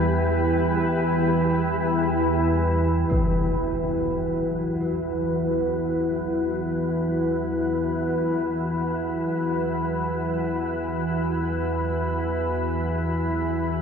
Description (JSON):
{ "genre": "dark ambient drone", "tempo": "free time", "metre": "none", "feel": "none", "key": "E minor", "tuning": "A4 = 440 Hz", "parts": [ { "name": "deep dark ambient pad", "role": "sustained chords", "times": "0.0-13.8 s", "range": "E3 to B5", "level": "-24 LUFS", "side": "equal", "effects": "chorus, built-in reverb" }, { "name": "organ-like drone", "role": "drone", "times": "0.0-13.8 s", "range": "E2 to E3", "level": "-27 LUFS", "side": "equal", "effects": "ensemble chorus, built-in reverb" }, { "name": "wind-like tuned noise texture", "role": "texture", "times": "0.0-13.8 s", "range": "F#3 to G4", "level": "-32 LUFS", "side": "left 1 dB", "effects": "built-in reverb" }, { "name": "gamelan-type bronze metallophone", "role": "arpeggios", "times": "3.1-9.9 s", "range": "B3", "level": "-51 LUFS", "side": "right 2 dB", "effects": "none" }, { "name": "impact", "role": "percussion", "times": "3.1-3.3 s", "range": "none", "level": "-29 LUFS", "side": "equal", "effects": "low-pass filter on sfx" } ], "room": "wet cathedral reverb, RT60 6.5 s", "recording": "dark, warm production", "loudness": "-22 LUFS", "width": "side -6 dB against mid", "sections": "0.0-3.1 A section; 3.1-13.8 B section", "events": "fade-in on synth drone 3.1-13.8", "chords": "0.0 E5", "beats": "free time" }